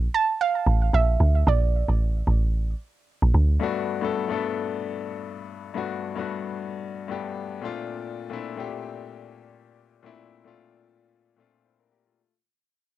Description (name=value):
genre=amapiano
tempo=112 BPM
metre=4/4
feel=swing 55% on 16ths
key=unclear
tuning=A4 = 440 Hz
part: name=deep log drum bass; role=bass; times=0.0-3.6 s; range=A1 to D2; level=-20 LUFS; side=right 1 dB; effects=none
part: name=soft round pluck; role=melody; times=0.1-2.5 s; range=D5 to A5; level=-25 LUFS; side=right 7 dB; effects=chorus, cassette tape, analog delay
part: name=clear baby grand piano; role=accompaniment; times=3.6-12.3 s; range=G2 to C5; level=-29 LUFS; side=left 8 dB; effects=cassette tape
room=little or no reverb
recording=home recording on cassette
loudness=-23 LUFS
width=side -14 dB against mid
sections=0.0-3.6 A section; 3.6-12.2 B section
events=drop 0.0-3.6; fade-out 3.6-12.2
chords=0.0 Bbmaj7; 3.6 Gmaj9; 7.6 Bbmaj9